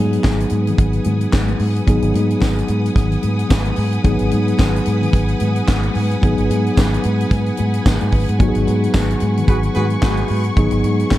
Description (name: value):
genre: disco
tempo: 110 BPM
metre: 4/4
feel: swing 56% on 16ths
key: G# minor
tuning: A4 = 440 Hz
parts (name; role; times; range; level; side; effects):
- mellow tine electric piano; accompaniment; 0.0-11.2 s; F#3 to G#4; -20 LUFS; left 1 dB; medium stereo tremolo
- clear studio string section; sustained chords; 0.0-11.2 s; B4 to D#6; -27 LUFS; right 1 dB; none
- vintage muted fingered electric bass; bass; 0.0-11.2 s; G#1 to G#2; -18 LUFS; equal; none
- tight funk drum kit; drums; 0.1-11.2 s; handclaps, hi-hat, kick drum, snare drum; -19 LUFS; equal; none
- congas; percussion; 0.3-11.2 s; none; -29 LUFS; left 6 dB; none
- tambourine; percussion; 0.3-11.2 s; none; -40 LUFS; right 5 dB; none
- warm horn section; stabs; 9.5-10.4 s; F#4 to B4; -24 LUFS; right 2 dB; none
room: light reverb, studio reverb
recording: dark, warm production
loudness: -14 LUFS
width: side -14 dB against mid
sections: 0.0-11.2 A section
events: none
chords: 0.0 G#m7